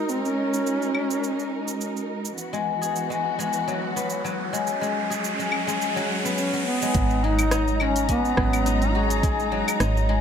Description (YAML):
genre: organic downtempo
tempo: 105 BPM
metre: 4/4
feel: swing 55% on 16ths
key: G# minor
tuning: A4 = 441 Hz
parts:
  - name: low Native American-style wooden flute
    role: melody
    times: 0.0-2.1, 6.4-9.8 s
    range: B3 to G#4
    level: -26 LUFS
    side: right 1 dB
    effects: tape echo
  - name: warm symphonic string section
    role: sustained chords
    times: 0.0-10.2 s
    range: E3 to A#5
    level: -29 LUFS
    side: equal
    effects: sidechain pumping
  - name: guzheng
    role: arpeggios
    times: 0.0-10.2 s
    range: F#3 to G#4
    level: -26 LUFS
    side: left 4 dB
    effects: tape echo
  - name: quartz singing bowl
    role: texture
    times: 0.0-7.0 s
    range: F#4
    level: -41 LUFS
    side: right 15 dB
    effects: none
  - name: deep house drum kit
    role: drums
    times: 0.1-10.1 s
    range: cabasa, claves, hi-hat, rim click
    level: -30 LUFS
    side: equal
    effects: none
  - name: riser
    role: sound effects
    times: 3.3-6.9 s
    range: none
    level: -31 LUFS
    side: right 2 dB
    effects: none
  - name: woody FM bass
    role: bass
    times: 6.9-10.2 s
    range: G#1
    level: -25 LUFS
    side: right 1 dB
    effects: sidechain pumping
  - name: electronic kick drum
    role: drums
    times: 7.0-9.4 s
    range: none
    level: -25 LUFS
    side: right 1 dB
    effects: none
room: moderate echo chamber reverb, RT60 1.6 s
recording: none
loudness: -22 LUFS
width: side -8 dB against mid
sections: 0.0-6.9 A section; 6.9-10.2 B section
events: riser 3.3-6.9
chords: 0.0 G#5; 2.4 E; 4.7 F#sus4; 6.9 G#m7